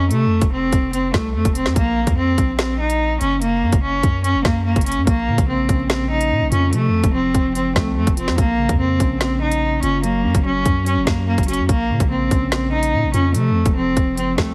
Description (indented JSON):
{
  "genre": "hip hop, drill",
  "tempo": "145 BPM",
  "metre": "4/4",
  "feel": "half-time",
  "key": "Bb harmonic minor",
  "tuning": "A4 = 440 Hz",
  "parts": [
    { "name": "bright cello", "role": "melody", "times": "0.0-14.5 s", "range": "A3 to Eb4", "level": "-22 LUFS", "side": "equal", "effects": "low-pass filter, tape echo" },
    { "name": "long sustained 808-style bass", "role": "bass", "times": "0.0-14.5 s", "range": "F1 to C3", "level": "-24 LUFS", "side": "equal", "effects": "none" },
    { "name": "drill drum kit", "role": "drums", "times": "0.1-14.5 s", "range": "hi-hat, kick drum, snare drum", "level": "-21 LUFS", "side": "equal", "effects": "none" },
    { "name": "mellow tine electric piano", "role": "accompaniment", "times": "5.1-14.5 s", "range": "Db3 to Gb4", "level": "-27 LUFS", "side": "equal", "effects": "low-pass filter" }
  ],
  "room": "digital ambience",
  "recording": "heavily compressed radio sound, vinyl crackle",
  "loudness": "-18 LUFS",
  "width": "mono",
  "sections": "0.0-14.5 A section",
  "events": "none",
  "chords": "0.1 F; 1.8 Bbsus2; 3.4 Gb; 5.1 Bbmadd9; 6.7 F; 8.4 Bbmadd9; 10.0 Gb; 11.7 Bbmadd9; 13.3 F",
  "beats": "| 0.10 0.52 0.93 1.35 | 1.76 2.17 2.59 3.00 | 3.42 3.83 4.24 4.66 | 5.07 5.48 5.90 6.31 | 6.72 7.14 7.55 7.97 | 8.38 8.79 9.21 9.62 | 10.04 10.45 10.86 11.28 | 11.69 12.11 12.52 12.93 | 13.35 13.76 14.17"
}